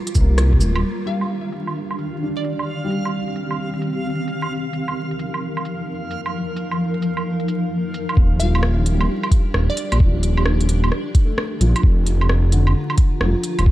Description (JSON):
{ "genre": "future garage", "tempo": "131 BPM", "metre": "4/4", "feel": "swing 65% on 16ths", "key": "unclear", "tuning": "A4 = 440 Hz", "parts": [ { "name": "felt-muted upright piano", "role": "accompaniment", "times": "0.0-4.5, 8.4-13.7 s", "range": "D3 to D4", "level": "-27 LUFS", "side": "left 2 dB", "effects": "vintage 12-bit sampler grit, sidechain pumping, tape echo" }, { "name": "granular cloud pad", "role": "sustained chords", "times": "0.0-13.7 s", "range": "Eb3 to Bb5", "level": "-25 LUFS", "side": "equal", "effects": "built-in reverb, sidechain pumping" }, { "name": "organic electronic drum kit", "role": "drums", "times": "0.1-13.6 s", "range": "cabasa, hi-hat, rim click, woodblock", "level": "-26 LUFS", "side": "right 2 dB", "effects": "low-pass filter on hats, studio reverb, low-pass filter on perc, low-pass filter on snare" }, { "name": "dark detuned saw bass", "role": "bass", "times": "0.2-0.8, 8.2-13.7 s", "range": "D1 to C2", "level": "-17 LUFS", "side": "equal", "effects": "sidechain pumping" }, { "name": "electronic kick drum", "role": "drums", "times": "0.2-0.6, 8.2-13.7 s", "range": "none", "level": "-15 LUFS", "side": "equal", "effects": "studio reverb" }, { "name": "backwards swelling texture", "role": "texture", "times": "1.5-8.2 s", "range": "F5", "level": "-34 LUFS", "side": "right 2 dB", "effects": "built-in reverb" }, { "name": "glassy wavetable pluck", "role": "melody", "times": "1.1-3.0, 8.4-10.3 s", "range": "D5 to F5", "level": "-33 LUFS", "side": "right 1 dB", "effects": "chorus, vintage 12-bit sampler grit, tape echo" } ], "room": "light reverb", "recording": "vinyl crackle", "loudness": "-18 LUFS", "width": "side -15 dB against mid", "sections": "0.8-8.2 A section; 8.2-13.7 B section", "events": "band accent 0.4; filter sweep on ambient pad 0.8-8.2", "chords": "0.0 Gm7; 0.8 Ebmaj7; 4.5 F7sus4; 8.2 Ebmaj7; 11.8 Fsus4" }